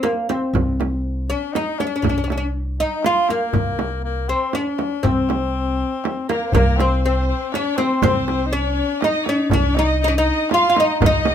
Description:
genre	Persian modal ensemble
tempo	120 BPM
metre	3/4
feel	straight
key	C dastgah shur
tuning	A4 = 440 Hz
part	oud	melody	0.0-11.3 s	Bb3 to F4	-21 LUFS	equal	none
part	frame drum	percussion	0.0-11.3 s	none	-23 LUFS	right 7 dB	none
part	upright bass	bass	0.5-11.3 s	C2	-22 LUFS	equal	none
part	tombak	percussion	0.5-11.3 s	none	-25 LUFS	left 2 dB	none
part	clear tenor saxophone	second line	1.3-11.3 s	Bb3 to F4	-25 LUFS	left 7 dB	none
part	rich studio violin section	second line	6.3-11.3 s	Bb4 to F5	-26 LUFS	equal	none
room	light reverb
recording	minimal, uncompressed stereo recording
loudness	-17 LUFS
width	side -9 dB against mid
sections	0.0-6.5 A section; 6.5-11.3 B section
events	none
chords	none

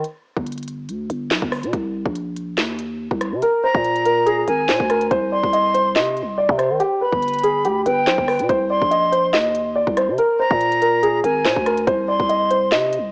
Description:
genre	hip hop, drill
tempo	142 BPM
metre	4/4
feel	half-time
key	C minor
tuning	A4 = 440 Hz
part	growling 808-style bass	bass	0.0-13.1 s	G1 to Eb3	-27 LUFS	equal	transformer saturation
part	drill drum kit	drums	0.0-13.0 s	handclaps, hi-hat, kick drum, rim click, snare drum	-26 LUFS	equal	cassette tape
part	dark concert grand piano	melody	3.4-13.1 s	G4 to Eb5	-21 LUFS	equal	low-pass filter, cassette tape
part	breathy bright jazz flute	second line	3.6-12.7 s	G5 to C6	-24 LUFS	equal	cassette tape, tape echo
room	light reverb, digital ambience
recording	home recording on cassette, small speaker sound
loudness	-19 LUFS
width	mono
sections	0.0-13.1 A section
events	break 0.0-3.4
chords	0.0 N.C.; 1.7 Cm; 3.4 Bb; 5.1 Cm; 6.8 G; 8.5 Cm; 10.2 Bb; 11.9 Cm

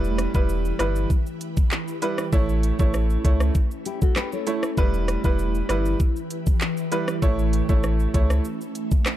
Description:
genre	dancehall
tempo	98 BPM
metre	4/4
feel	straight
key	E dorian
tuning	A4 = 440 Hz
part	bright baby grand piano	accompaniment	0.0-8.4 s	G3 to C#5	-26 LUFS	right 3 dB	none
part	ethereal airy pad	sustained chords	0.0-9.2 s	E3 to B4	-30 LUFS	equal	ensemble chorus, built-in reverb, phaser, sidechain pumping
part	warm sub bass	bass	0.0-8.4 s	E1 to C#2	-23 LUFS	equal	none
part	island pop drum kit	drums	0.0-9.2 s	handclaps, hi-hat, kick drum, rim click, shaker	-22 LUFS	equal	overdrive
part	nylon-string guitar	arpeggios	3.9-4.8 s	E4 to C#5	-30 LUFS	left 8 dB	none
room	little or no reverb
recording	dark, warm production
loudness	-20 LUFS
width	side -12 dB against mid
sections	0.0-9.2 A section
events	none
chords	0.0 Em; 2.3 A; 4.8 Em; 7.2 A

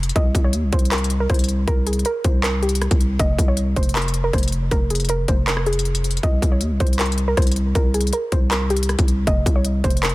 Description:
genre	hip hop, trap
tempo	158 BPM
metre	4/4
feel	half-time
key	C phrygian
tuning	A4 = 442 Hz
part	growling 808-style bass	bass	0.0-10.1 s	F1 to Eb2	-21 LUFS	equal	none
part	trap drum kit	drums	0.0-10.1 s	handclaps, hi-hat, kick drum, rim click	-20 LUFS	equal	none
part	soft round pluck	melody	0.2-10.1 s	G4 to Eb5	-25 LUFS	equal	chorus, low-pass filter, tape echo
room	digital ambience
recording	dense, heavily limited modern master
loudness	-17 LUFS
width	side -19 dB against mid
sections	0.0-10.1 A section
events	break 0.0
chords	0.2 C5; 3.2 Fm; 6.2 C5; 9.3 F5

